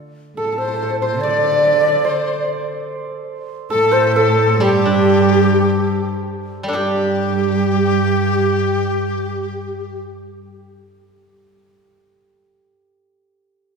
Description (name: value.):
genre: chinese traditional, Chinese chamber ensemble.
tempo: 49-73 BPM.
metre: 2/4.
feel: rubato.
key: unclear.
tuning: A4 = 441 Hz.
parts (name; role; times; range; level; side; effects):
steel-string zither; accompaniment; 0.0-0.4, 4.6-12.7 s; D3 to A4; -25 LUFS; equal; none.
breathy hollow low xiao; melody; 0.4-10.0 s; G4 to D5; -19 LUFS; equal; none.
bright large dizi; second line; 0.4-10.0 s; G4 to D5; -22 LUFS; left 4 dB; none.
dark cello; second line; 0.4-10.0 s; G2 to D3; -20 LUFS; right 3 dB; none.
hammered dulcimer; second line; 0.4-10.0 s; G4 to D5; -25 LUFS; right 4 dB; none.
room: wet concert hall reverb, RT60 2.4 s.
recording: heard from further back in the room.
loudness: -15 LUFS.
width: side -5 dB against mid.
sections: 0.0-6.8 A section; 6.8-11.5 B section.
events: slowing down 2.9-6.8.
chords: none.